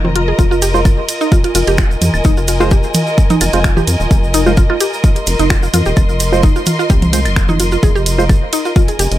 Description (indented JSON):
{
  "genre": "minimal techno",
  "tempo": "129 BPM",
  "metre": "4/4",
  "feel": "swing 53% on 16ths",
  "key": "F minor",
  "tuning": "A4 = 441 Hz",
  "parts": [
    { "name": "mallet-like synth pluck", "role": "riff", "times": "0.0-9.0 s", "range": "C4 to Ab4", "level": "-19 LUFS", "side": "right 1 dB", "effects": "chorus, phaser, sidechain pumping, tape echo" },
    { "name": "rubbery square bass", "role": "bass", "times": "0.0-9.2 s", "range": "Eb1 to F2", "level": "-16 LUFS", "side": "equal", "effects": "sidechain pumping" },
    { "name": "electronic toms, bongos and claves", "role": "percussion", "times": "0.0-8.4 s", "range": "none", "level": "-18 LUFS", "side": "equal", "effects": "none" },
    { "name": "warm symphonic string section", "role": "texture", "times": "0.0-9.2 s", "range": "F4 to C6", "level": "-20 LUFS", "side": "left 1 dB", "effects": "sidechain pumping" },
    { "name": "house drum kit", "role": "drums", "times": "0.2-9.2 s", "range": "finger snaps, hi-hat, ride cymbal", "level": "-22 LUFS", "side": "right 3 dB", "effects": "none" },
    { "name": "electronic kick drum", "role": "drums", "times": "0.4-8.9 s", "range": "none", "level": "-12 LUFS", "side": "equal", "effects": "none" },
    { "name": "egg shaker", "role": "percussion", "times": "0.4-9.2 s", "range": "none", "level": "-26 LUFS", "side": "right 2 dB", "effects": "none" },
    { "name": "percussive organ stab", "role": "stabs", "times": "0.7-8.2 s", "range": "Ab3 to C5", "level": "-20 LUFS", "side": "right 5 dB", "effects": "chorus, phaser, dub echo" }
  ],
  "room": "little or no reverb",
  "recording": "none",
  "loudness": "-10 LUFS",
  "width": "side -14 dB against mid",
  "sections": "0.0-9.2 A section",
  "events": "none",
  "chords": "0.0 Fm"
}